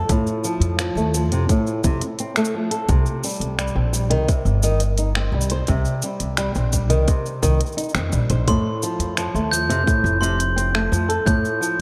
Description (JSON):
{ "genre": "folktronica", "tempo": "86 BPM", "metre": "4/4", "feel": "straight", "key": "C dorian", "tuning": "A4 = 440 Hz", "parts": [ { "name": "flamenco guitar", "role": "arpeggios", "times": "0.0-11.8 s", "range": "A2 to C5", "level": "-25 LUFS", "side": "equal", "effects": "diffuse ambient delay" }, { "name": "upright bass", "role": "bass", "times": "0.0-11.4 s", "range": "F1 to F2", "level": "-24 LUFS", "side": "equal", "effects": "none" }, { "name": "electronic kick drum", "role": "drums", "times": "0.1-11.4 s", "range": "none", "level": "-23 LUFS", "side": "equal", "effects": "small room ambience" }, { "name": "organic electronic drum kit", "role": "drums", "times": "0.1-11.8 s", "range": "finger snaps, hi-hat, shaker", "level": "-30 LUFS", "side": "equal", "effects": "small room ambience" }, { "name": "glockenspiel with brass mallets", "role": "second line", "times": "8.5-11.6 s", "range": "C6 to G6", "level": "-26 LUFS", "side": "equal", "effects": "analog delay" } ], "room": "moderate plate reverb, RT60 3.7 s", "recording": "dreamy mix soaked in reverb", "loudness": "-21 LUFS", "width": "mono", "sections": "0.0-11.8 A section", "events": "none", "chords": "0.0 F; 2.9 Cm; 8.5 F" }